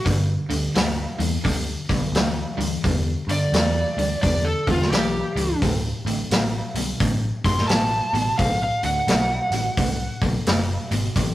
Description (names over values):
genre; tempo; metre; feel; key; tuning
blues rock power trio and southern rock; 86 BPM; 4/4; swing 64% on 8ths; D major; A4 = 440 Hz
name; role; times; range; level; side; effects
overdriven slide guitar; melody; 0.0-10.2 s; F4 to C6; -24 LUFS; equal; none
raw garage guitar; riff; 0.0-11.3 s; D2 to E3; -27 LUFS; equal; overdrive, spring reverb
vintage muted picked electric bass; bass; 0.1-11.3 s; D1 to G2; -26 LUFS; equal; none
vintage drum kit; drums; 0.1-11.3 s; hi-hat, kick drum, snare drum; -23 LUFS; equal; none
room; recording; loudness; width
moderate stone room reverb, RT60 1.2 s; rough rehearsal-room recording, tube saturation; -20 LUFS; side -15 dB against mid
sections
0.0-11.3 A section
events
none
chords
0.1 G5; 5.6 D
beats
| 0.06 0.75 1.45 2.14 | 2.84 3.53 4.22 4.92 | 5.61 6.30 7.00 7.69 | 8.38 9.08 9.77 10.46 | 11.16